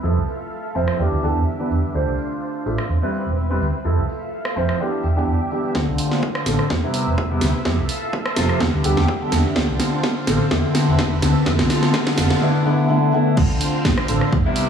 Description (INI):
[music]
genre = filtered disco house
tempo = 126 BPM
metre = 4/4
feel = swing 54% on 16ths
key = D dorian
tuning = A4 = 439 Hz
[part]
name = warm concert grand piano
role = accompaniment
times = 0.0-14.7 s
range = C3 to E5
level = -21 LUFS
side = left 1 dB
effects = phaser, vintage 12-bit sampler grit, sidechain pumping, low-pass filter
[part]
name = string machine, full ensemble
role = sustained chords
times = 0.0-14.7 s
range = C4 to F5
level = -28 LUFS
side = right 1 dB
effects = ensemble chorus, sidechain pumping, low-pass filter
[part]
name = fingered electric bass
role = bass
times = 0.0-14.4 s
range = E1 to F2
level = -22 LUFS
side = right 1 dB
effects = sidechain pumping, low-pass filter
[part]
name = tambourine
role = percussion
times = 0.0-5.7 s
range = none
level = -66 LUFS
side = right 6 dB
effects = none
[part]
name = house drum kit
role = drums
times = 0.9-14.7 s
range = crash cymbal, hi-hat, rim click, snare drum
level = -23 LUFS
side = right 1 dB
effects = low-pass filter on snare, sidechain pumping on hats, low-pass filter on hats, sidechain pumping on cymbals, low-pass filter on cymbals, low-pass filter on room
[part]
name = electronic kick drum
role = drums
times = 5.8-14.4 s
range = none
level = -23 LUFS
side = right 1 dB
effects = high-pass filter on kick
[sound]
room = moderate echo chamber reverb, RT60 2.5 s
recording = studio reverb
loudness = -17 LUFS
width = side -7 dB against mid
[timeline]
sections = 0.0-5.8 A section; 5.8-13.4 B section; 13.4-14.7 C section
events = filter sweep 0.0-5.8, 5.8-13.4; build-up 5.8-13.4; drum fill 5.8-12.4; drop 13.4-14.7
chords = 0.0 Fmaj7; 1.0 Em7; 1.9 Dm7; 2.9 Cmaj7/E; 3.8 Fmaj7; 4.8 Em7; 5.8 Dm7; 6.7 Cmaj7/E; 7.7 Fmaj7; 8.6 Em7; 9.6 Dm7; 10.5 Cmaj7/E; 11.5 F; 12.4 E5; 13.4 Dm7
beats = | 0.04 0.51 0.99 1.47 | 1.94 2.42 2.89 3.37 | 3.85 4.32 4.80 5.28 | 5.75 6.23 6.70 7.18 | 7.66 8.13 8.61 9.08 | 9.56 10.04 10.51 10.99 | 11.46 11.94 12.42 12.89 | 13.37 13.85 14.32